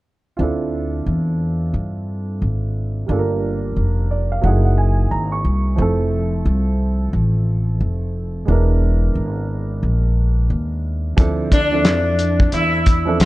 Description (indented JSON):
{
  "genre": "hip hop, jazz-hop",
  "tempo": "89 BPM",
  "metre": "4/4",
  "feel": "swing 61% on 16ths",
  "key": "D minor",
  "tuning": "A4 = 437 Hz",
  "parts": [
    { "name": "dark upright piano", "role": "accompaniment", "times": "0.4-13.3 s", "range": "F3 to C#6", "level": "-24 LUFS", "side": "right 3 dB", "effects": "none" },
    { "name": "upright bass", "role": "bass", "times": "0.4-13.3 s", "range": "E1 to G2", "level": "-18 LUFS", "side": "equal", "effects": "none" },
    { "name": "cloth-damped thuddy drum kit", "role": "drums", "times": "11.2-13.3 s", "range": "hi-hat, kick drum, snare drum", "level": "-16 LUFS", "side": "equal", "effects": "none" },
    { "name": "sitar", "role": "melody", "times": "11.5-13.3 s", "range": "D4 to F4", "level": "-18 LUFS", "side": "left 1 dB", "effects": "none" }
  ],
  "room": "small room ambience",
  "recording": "none",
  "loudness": "-16 LUFS",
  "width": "side -18 dB against mid",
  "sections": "0.4-11.2 A section; 11.2-13.3 B section",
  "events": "upright piano fill 3.8-5.8",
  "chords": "0.4 Dm9; 3.1 Gm7; 4.4 F#13; 5.8 Fmaj7; 8.5 E7#11; 11.2 Dm9"
}